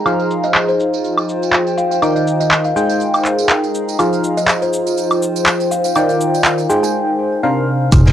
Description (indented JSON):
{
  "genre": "piano house",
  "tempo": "122 BPM",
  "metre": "4/4",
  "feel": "swing 55% on 16ths",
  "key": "F dorian",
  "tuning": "A4 = 441 Hz",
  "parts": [
    { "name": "kalimba", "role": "melody", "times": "0.0-6.9 s", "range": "C5 to Bb5", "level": "-21 LUFS", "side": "left 2 dB", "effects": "cassette tape, tape echo" },
    { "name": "barking FM electric piano", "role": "riff", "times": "0.0-8.1 s", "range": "C3 to G5", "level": "-17 LUFS", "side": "equal", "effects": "phaser, sidechain pumping, cassette tape, tape echo" },
    { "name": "warbly tape-like pad", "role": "texture", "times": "0.0-8.1 s", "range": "Eb4 to Bb5", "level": "-22 LUFS", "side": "right 1 dB", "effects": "chorus, built-in reverb, sidechain pumping, cassette tape" },
    { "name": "punchy analog drum machine", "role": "drums", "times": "0.1-8.1 s", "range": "handclaps, hi-hat, shaker, woodblock", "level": "-16 LUFS", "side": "equal", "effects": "cassette tape" },
    { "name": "tambourine", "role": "percussion", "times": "0.1-8.1 s", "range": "none", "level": "-31 LUFS", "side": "right 14 dB", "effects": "none" },
    { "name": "fingered electric bass", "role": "bass", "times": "7.9-8.1 s", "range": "F1", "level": "-10 LUFS", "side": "equal", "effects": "tube saturation, sidechain pumping" },
    { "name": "electronic kick drum", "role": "drums", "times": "7.9-8.0 s", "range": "none", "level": "-11 LUFS", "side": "equal", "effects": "cassette tape" },
    { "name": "shaker and snare drum", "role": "drums", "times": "7.9-8.1 s", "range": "none", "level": "-26 LUFS", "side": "equal", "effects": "high-pass filter on snare, cassette tape, sidechain pumping on perc, high-pass filter on perc, high-pass filter on room" },
    { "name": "sub drop", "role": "sound effects", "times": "7.9-8.1 s", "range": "none", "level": "-14 LUFS", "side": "equal", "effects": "none" }
  ],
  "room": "moderate studio reverb, RT60 0.6 s",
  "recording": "home recording on cassette, low-pass filter",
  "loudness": "-13 LUFS",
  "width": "side -10 dB against mid",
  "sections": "0.0-7.9 A section",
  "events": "break 6.9-7.9; impact 7.9",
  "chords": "0.1 Fm7; 2.0 Ebmaj7; 2.8 Abmaj7; 4.0 Fm7; 6.0 Ebmaj7; 6.7 Abmaj7; 7.4 C9sus4"
}